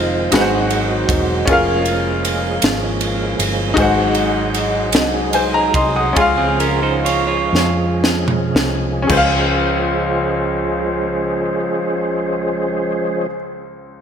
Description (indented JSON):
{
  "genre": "slow gospel",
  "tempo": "35-52 BPM (dotted quarters)",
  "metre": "6/8",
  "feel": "straight",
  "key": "Db major",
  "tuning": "A4 = 440 Hz",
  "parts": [
    { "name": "clear grand piano", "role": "accompaniment", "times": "0.0-14.0 s", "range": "Db2 to Eb6", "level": "-19 LUFS", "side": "left 2 dB", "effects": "slapback echo" },
    { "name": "percussive tonewheel organ", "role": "sustained chords", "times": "0.0-13.3 s", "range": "Eb3 to C5", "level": "-21 LUFS", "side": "right 2 dB", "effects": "slow rotary speaker, overdrive, chorus vibrato" },
    { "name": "hollow-body short-scale fingered electric bass", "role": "bass", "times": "0.0-13.3 s", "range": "Fb1 to F2", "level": "-23 LUFS", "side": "equal", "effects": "none" },
    { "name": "crisp fusion drum kit", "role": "drums", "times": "0.3-9.4 s", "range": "crash cymbal, kick drum, ride cymbal, snare drum, toms", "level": "-20 LUFS", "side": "right 1 dB", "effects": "none" },
    { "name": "clean electric guitar", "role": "second line", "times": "6.2-8.8 s", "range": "Ab3 to Db5", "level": "-21 LUFS", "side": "right 7 dB", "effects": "spring reverb, slapback echo" }
  ],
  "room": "moderate lush hall reverb, RT60 2.0 s",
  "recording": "big arena sound",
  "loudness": "-14 LUFS",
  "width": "side -8 dB against mid",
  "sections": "0.0-9.1 A section; 9.1-12.5 B section",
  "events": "slowing down 3.8-9.1; drum fill 7.5-9.1",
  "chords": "0.3 Ab7; 1.5 Db6/F; 3.8 Ab7; 6.2 Dbmaj7"
}